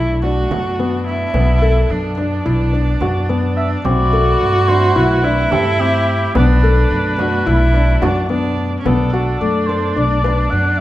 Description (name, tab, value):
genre	contemporary instrumental, chamber music in an uneven meter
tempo	216 BPM (eighths)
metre	9/8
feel	straight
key	B phrygian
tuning	A4 = 440 Hz
part	rich viola	second line	0.0-10.8 s	C#4 to F#4	-20 LUFS	right 2 dB	none
part	muted studio string section	sustained chords	0.0-10.8 s	B2 to E4	-27 LUFS	left 1 dB	none
part	felt-muted upright piano	arpeggios	0.0-10.7 s	A3 to B4	-20 LUFS	left 3 dB	none
part	upright bass	bass	0.0-10.8 s	B1 to G2	-17 LUFS	equal	none
part	frame drum	percussion	0.2-10.5 s	none	-27 LUFS	right 4 dB	none
part	mellow oboe	melody	3.6-10.8 s	G4 to F#5	-21 LUFS	equal	none
room	moderate recital hall reverb, RT60 1.6 s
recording	none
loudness	-13 LUFS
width	side -14 dB against mid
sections	0.0-8.9 A section; 8.9-10.8 B section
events	none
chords	0.0 Bm7; 3.9 C6/B; 6.4 Bm7